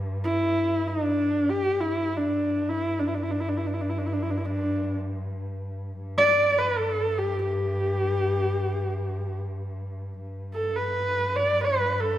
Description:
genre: mongolian traditional, Mongolian folk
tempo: free time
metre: none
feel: none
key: G gong mode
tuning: A4 = 440 Hz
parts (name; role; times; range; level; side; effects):
- warm cello; drone; 0.0-12.2 s; G2; -30 LUFS; equal; none
- warm horsehead fiddle; melody; 0.2-12.2 s; D4 to D5; -24 LUFS; equal; none
room: wet recital hall reverb, RT60 1.8 s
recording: none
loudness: -24 LUFS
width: side -12 dB against mid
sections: 0.0-12.2 A section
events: none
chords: none

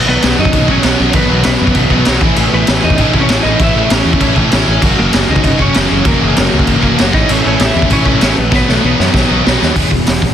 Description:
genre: punk rock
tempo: 195 BPM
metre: 4/4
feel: straight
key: B mixolydian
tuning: A4 = 440 Hz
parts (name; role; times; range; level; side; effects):
- distorted electric guitar; riff; 0.0-10.3 s; A2 to F#4; -16 LUFS; equal; overdrive
- fuzz guitar; riff; 0.0-10.3 s; E2 to B3; -18 LUFS; equal; distortion
- lightly driven lead guitar; melody; 0.1-9.4 s; A3 to E5; -18 LUFS; equal; ping-pong delay
- picked electric bass; bass; 0.1-10.3 s; E1 to F#2; -17 LUFS; equal; none
- raw garage drum kit; drums; 0.2-10.3 s; crash cymbal, hi-hat, kick drum, snare drum; -13 LUFS; equal; none
room: little or no reverb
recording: dense, heavily limited modern master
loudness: -9 LUFS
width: side -9 dB against mid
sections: 0.0-9.7 A section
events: drum fill 8.5-9.7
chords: 0.0 B; 2.2 A; 4.8 F#; 7.1 A; 8.5 B; 9.7 E

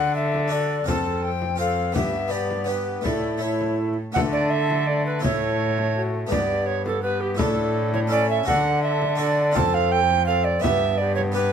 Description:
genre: classical, renaissance-style consort dance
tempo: 166 BPM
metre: 3/4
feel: straight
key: unclear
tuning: A4 = 440 Hz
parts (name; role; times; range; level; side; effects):
- mellow tenor recorder; melody; 0.0-11.5 s; D4 to A5; -29 LUFS; left 6 dB; none
- bright tenor recorder; second line; 0.0-11.5 s; E4 to A5; -24 LUFS; right 5 dB; none
- clear bassoon; accompaniment; 0.0-11.5 s; A3 to D4; -29 LUFS; left 4 dB; none
- harpsichord; accompaniment; 0.0-11.5 s; F2 to A4; -31 LUFS; left 1 dB; none
- rich cello; bass; 0.0-11.5 s; F2 to D3; -26 LUFS; right 1 dB; none
- frame drum; percussion; 0.3-11.3 s; none; -28 LUFS; left 2 dB; none
room: moderate stone room reverb, RT60 0.9 s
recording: minimal, uncompressed stereo recording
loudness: -20 LUFS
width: side -8 dB against mid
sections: 0.0-4.2 A section; 4.2-11.5 A section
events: none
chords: 0.0 D; 0.9 F; 2.0 G; 3.1 A; 4.2 D5; 5.2 A; 6.3 G; 7.4 Asus4; 8.1 A; 8.5 D; 9.6 F; 10.6 G

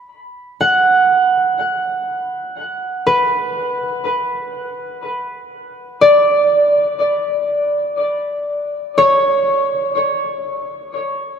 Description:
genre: ambient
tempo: 61 BPM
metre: 4/4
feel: straight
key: B minor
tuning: A4 = 440 Hz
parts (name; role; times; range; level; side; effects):
- concert harp; solo; 0.6-10.9 s; B4 to F#5; -15 LUFS; right 1 dB; diffuse ambient delay
room: wet cathedral reverb, RT60 6.3 s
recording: dark, warm production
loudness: -14 LUFS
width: side -7 dB against mid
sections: 0.0-11.4 A section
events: none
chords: none

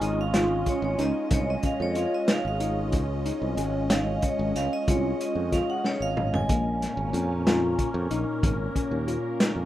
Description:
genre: progressive instrumental, band music in an uneven meter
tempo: 185 BPM (eighths)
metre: 11/8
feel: straight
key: unclear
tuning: A4 = 440 Hz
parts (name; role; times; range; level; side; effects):
- vibraphone with hard mallets; melody; 0.0-7.9 s; Db5 to Ab5; -32 LUFS; right 1 dB; tape echo
- phased analog pad; accompaniment; 0.0-9.7 s; Bb2 to Eb5; -30 LUFS; right 2 dB; phaser, chorus
- tine electric piano; arpeggios; 0.0-9.5 s; Bb3 to F4; -30 LUFS; left 4 dB; none
- modern bright fingered electric bass; bass; 0.0-9.7 s; Ab1 to F2; -29 LUFS; equal; none
- vintage drum kit; drums; 0.0-9.6 s; hi-hat, kick drum, snare drum, toms; -26 LUFS; equal; none
room: light reverb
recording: rough home demo mix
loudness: -24 LUFS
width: side -13 dB against mid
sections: 0.0-9.7 A section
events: vibraphone solo 0.0-9.7; drum fill 5.8-6.5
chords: 0.0 Dbadd9; 6.5 Bbm

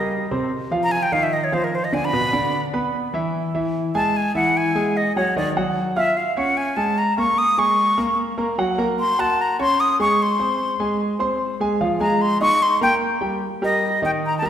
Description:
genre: jazz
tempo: 149 BPM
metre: 4/4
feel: straight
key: unclear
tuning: A4 = 438 Hz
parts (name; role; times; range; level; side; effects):
- breathy silver concert flute; melody; 0.0-14.5 s; Bb4 to Eb6; -20 LUFS; left 1 dB; none
- warm grand piano; accompaniment; 0.0-14.5 s; B2 to Gb6; -22 LUFS; right 1 dB; none
room: wet concert hall reverb, RT60 1.9 s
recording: recorded in a church or concert hall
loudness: -18 LUFS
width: side -9 dB against mid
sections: 0.5-13.4 A section; 13.4-14.5 B section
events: flute solo 0.5-13.4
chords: 0.0 Eb; 0.5 F7(no3); 2.1 E5; 3.7 Eadd9; 5.4 Ebmadd9; 6.2 Amaj7#5; 7.0 Bbm7; 8.6 Gbadd9; 10.2 Ab; 11.8 Fm7; 12.6 Eb

